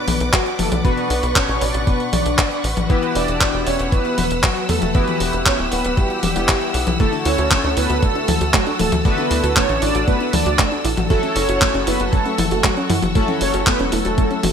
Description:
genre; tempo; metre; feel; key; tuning
italo disco; 117 BPM; 4/4; straight; B minor; A4 = 440 Hz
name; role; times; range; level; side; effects
mellow synth brass; melody; 0.0-14.5 s; F#3 to D5; -21 LUFS; right 1 dB; chorus, ping-pong delay
rich symphonic string section; sustained chords; 0.0-14.5 s; A4 to E6; -27 LUFS; left 1 dB; none
chorused polysynth; stabs; 0.0-14.4 s; B2 to F#5; -26 LUFS; left 4 dB; cassette tape
tight sequencer bass; bass; 0.1-14.5 s; D1 to F#2; -23 LUFS; equal; none
gated 80s digital drum machine; drums; 0.1-14.5 s; handclaps, hi-hat, toms; -21 LUFS; left 2 dB; gated reverb
electronic kick drum; drums; 0.3-14.3 s; none; -18 LUFS; equal; none
soft round pluck; arpeggios; 7.0-14.5 s; A3 to F#4; -26 LUFS; right 5 dB; chorus, digital delay
room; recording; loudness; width
light reverb; bright 1980s-style digital production; -16 LUFS; side -7 dB against mid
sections
0.0-14.5 A section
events
none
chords
0.0 Bm; 2.9 Emadd9; 7.0 Dadd9; 11.1 F#m7

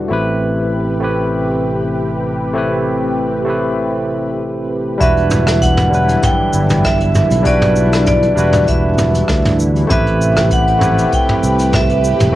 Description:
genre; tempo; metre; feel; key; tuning
sunset chillout; 98 BPM; 4/4; straight; E minor; A4 = 441 Hz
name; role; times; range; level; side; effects
barky tine electric piano; accompaniment; 0.0-12.4 s; F#3 to B4; -18 LUFS; equal; overdrive, auto-pan, cassette tape
lush unison pad; sustained chords; 0.0-12.4 s; C3 to B4; -22 LUFS; equal; chorus, phaser, cassette tape
fingered electric bass; bass; 0.0-12.4 s; E1 to D2; -18 LUFS; equal; none
vibraphone with hard mallets; melody; 5.0-12.4 s; D5 to G5; -17 LUFS; right 1 dB; cassette tape
electronic kick drum; drums; 5.0-11.9 s; none; -19 LUFS; equal; cassette tape
vintage brush drum kit; drums; 5.0-12.3 s; hi-hat, rim click, shaker, toms; -20 LUFS; equal; cassette tape
room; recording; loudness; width
light reverb; home recording on cassette; -12 LUFS; side -14 dB against mid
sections
0.0-5.0 A section; 5.0-12.4 B section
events
none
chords
0.1 Am9; 5.0 Em9; 9.9 Am9

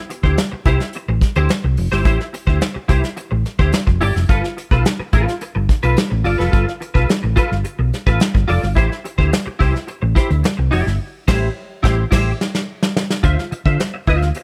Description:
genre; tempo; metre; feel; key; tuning
funk; 107 BPM; 4/4; straight; unclear; A4 = 440 Hz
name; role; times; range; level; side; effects
clean electric guitar; accompaniment; 0.1-14.4 s; E4 to E5; -24 LUFS; equal; ensemble chorus
soft brush drum kit; drums; 0.1-14.4 s; crash cymbal, hi-hat, kick drum, snare drum; -20 LUFS; equal; none
hollow-body short-scale fingered electric bass; bass; 0.2-14.3 s; F1 to D3; -20 LUFS; equal; none
room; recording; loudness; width
little or no reverb; none; -18 LUFS; mono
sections
0.0-13.2 A section; 13.2-14.4 B section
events
band accent 11.0-13.2; drum fill 12.1-13.2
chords
0.0 Am7 (rootless); 4.3 G9; 8.8 Am7; 13.2 Dm9

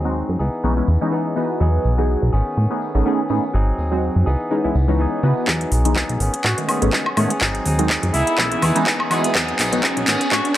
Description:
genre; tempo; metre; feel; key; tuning
filtered disco house; 124 BPM; 4/4; swing 55% on 16ths; E major; A4 = 439 Hz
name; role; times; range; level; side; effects
funky polysynth comp; accompaniment; 0.0-10.1 s; D#3 to B4; -22 LUFS; equal; chorus, phaser, sidechain pumping, low-pass filter
direct-recorded clean electric guitar; riff; 0.0-10.6 s; D#3 to G#4; -25 LUFS; left 1 dB; sidechain pumping, low-pass filter
plucky analog bass; bass; 0.0-10.4 s; G#1 to C#3; -19 LUFS; equal; sidechain pumping, low-pass filter
tambourine; percussion; 0.1-10.4 s; none; -37 LUFS; left 1 dB; none
electronic kick drum; drums; 5.5-10.4 s; none; -28 LUFS; equal; none
house drum kit; drums; 5.5-10.5 s; handclaps, hi-hat, woodblock; -21 LUFS; equal; overdrive, high-pass filter on snare, sidechain pumping on hats, high-pass filter on hats, sidechain pumping on perc, high-pass filter on perc, high-pass filter on room
riser; sound effects; 7.6-10.6 s; none; -28 LUFS; right 1 dB; none
clear horn section; melody; 6.4-10.5 s; E4 to F#4; -24 LUFS; equal; sidechain pumping, low-pass filter, tape echo
room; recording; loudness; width
light reverb; dry, gritty hardware recording, high-pass filter; -16 LUFS; side -13 dB against mid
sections
0.0-5.5 A section; 5.5-10.6 B section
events
filter sweep 0.0-5.5, 5.5-10.6; build-up 5.5-10.6; drum fill 5.5-10.6; riser 7.6-10.6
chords
0.4 C#m9; 1.6 Emaj9; 2.3 Amaj9#11; 3.5 G#7; 4.3 C#m9; 5.5 Emaj9; 6.2 Amaj9#11; 7.4 G#7; 8.1 C#m9; 9.3 Emaj9

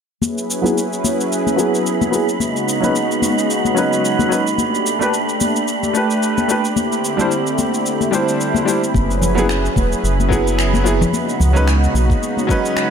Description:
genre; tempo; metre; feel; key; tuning
sunset chillout; 110 BPM; 4/4; swing 56% on 16ths; unclear; A4 = 439 Hz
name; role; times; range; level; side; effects
lush unison pad; sustained chords; 0.2-12.9 s; C#3 to B4; -20 LUFS; right 1 dB; chorus, vintage 12-bit sampler grit
electronic shaker and finger snaps; drums; 0.2-12.9 s; none; -26 LUFS; equal; studio reverb
congas; percussion; 0.2-12.5 s; none; -23 LUFS; left 4 dB; none
wind-like tuned noise texture; texture; 1.0-12.9 s; B5; -26 LUFS; right 5 dB; built-in reverb
bright concert grand piano; accompaniment; 0.6-12.9 s; F#3 to C5; -20 LUFS; equal; auto-pan, low-pass filter, digital delay
round analog bass; bass; 8.9-12.1 s; E1 to C#2; -17 LUFS; equal; none
electronic kick drum; drums; 8.9-12.6 s; none; -18 LUFS; equal; studio reverb
room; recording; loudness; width
light reverb; none; -15 LUFS; side -7 dB against mid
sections
0.2-12.9 A section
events
filter sweep on grand piano 0.2-12.9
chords
0.2 F#9sus4; 2.4 C#9sus4; 4.6 A9sus4; 6.8 D9sus4; 8.9 F#9sus4; 11.1 C#9sus4

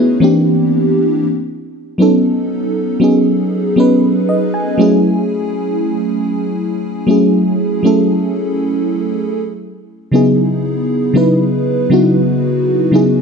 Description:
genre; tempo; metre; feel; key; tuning
R&B; 59 BPM; 4/4; straight; unclear; A4 = 440 Hz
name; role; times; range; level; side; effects
FM electric piano with soft pad layer; solo; 0.0-13.2 s; C#3 to G#5; -12 LUFS; equal; chorus
room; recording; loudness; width
light reverb; dark, warm production, nothing above 10.3 kHz; -12 LUFS; side -5 dB against mid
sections
0.0-13.2 A section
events
FM electric piano fill 3.8-5.3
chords
0.2 C9; 1.2 B9; 4.8 F#m9; 9.4 C#m11

